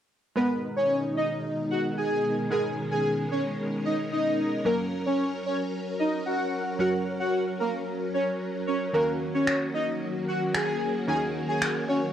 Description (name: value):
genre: dance-pop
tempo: 112 BPM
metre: 4/4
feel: straight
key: G# minor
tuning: A4 = 440 Hz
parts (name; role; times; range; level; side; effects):
- soft supersaw; melody; 0.4-12.0 s; A#3 to G#5; -27 LUFS; equal; cassette tape, analog delay
- glassy wavetable pluck; accompaniment; 0.4-12.1 s; D#3 to A#4; -34 LUFS; right 2 dB; chorus, cassette tape
- string machine, violins; sustained chords; 0.4-12.1 s; B2 to A#4; -31 LUFS; equal; ensemble chorus, cassette tape
- electronic finger snaps; drums; 9.5-11.7 s; none; -30 LUFS; equal; cassette tape
room: light reverb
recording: home recording on cassette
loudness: -25 LUFS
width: side -10 dB against mid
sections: 0.4-12.1 A section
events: none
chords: 0.4 G#madd9; 4.7 F#; 8.9 D#m7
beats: | 0.37 0.90 1.44 1.97 | 2.51 3.04 3.58 4.12 | 4.65 5.19 5.72 6.26 | 6.79 7.33 7.87 8.40 | 8.94 9.47 10.01 10.54 | 11.08 11.62